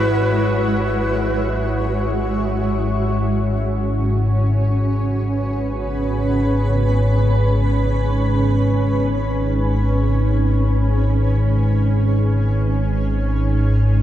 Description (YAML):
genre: dark ambient drone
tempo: free time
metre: none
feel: none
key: G# minor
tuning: A4 = 441 Hz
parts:
  - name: bright reedy shakuhachi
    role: melody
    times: 0.0-2.2 s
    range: B4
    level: -25 LUFS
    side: right 2 dB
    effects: diffuse ambient delay
  - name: granular cloud pad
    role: sustained chords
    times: 0.0-14.0 s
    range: G#3 to C#5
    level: -22 LUFS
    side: right 1 dB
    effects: built-in reverb
  - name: analog drone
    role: drone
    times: 0.0-14.0 s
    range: G#1 to G#2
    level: -18 LUFS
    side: equal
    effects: lush chorus
  - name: flickering grainy texture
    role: texture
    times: 0.0-2.7 s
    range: F#4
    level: -33 LUFS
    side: right 3 dB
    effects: none
room: wet cathedral reverb, RT60 5.1 s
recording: in a vast, echoing space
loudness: -16 LUFS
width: side -12 dB against mid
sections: 0.0-2.7 A section; 2.7-14.0 B section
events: fade-out on ambient pad 2.7-14.0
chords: 0.0 Esus2/G#; 2.7 G#m